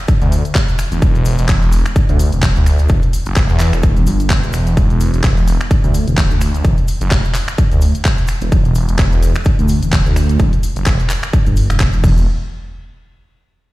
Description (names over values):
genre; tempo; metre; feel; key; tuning
bass house; 128 BPM; 4/4; swing 56% on 16ths; E minor; A4 = 440 Hz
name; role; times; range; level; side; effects
electronic kick drum; drums; 0.1-12.1 s; none; -14 LUFS; equal; overdrive
garage drum kit; drums; 0.1-12.1 s; crash cymbal, finger snaps, handclaps, hi-hat; -23 LUFS; equal; none
cabasa; percussion; 0.1-12.3 s; none; -37 LUFS; left 3 dB; none
phased detuned saw bass; bass; 0.2-12.3 s; E1 to E2; -14 LUFS; equal; phaser, sidechain pumping
room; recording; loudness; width
little or no reverb; played on a big sound system in a bare room, large studio reverb; -12 LUFS; side -18 dB against mid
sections
0.0-12.3 A section; 12.3-13.7 B section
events
filter sweep on detuned saw bass 0.0-12.3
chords
none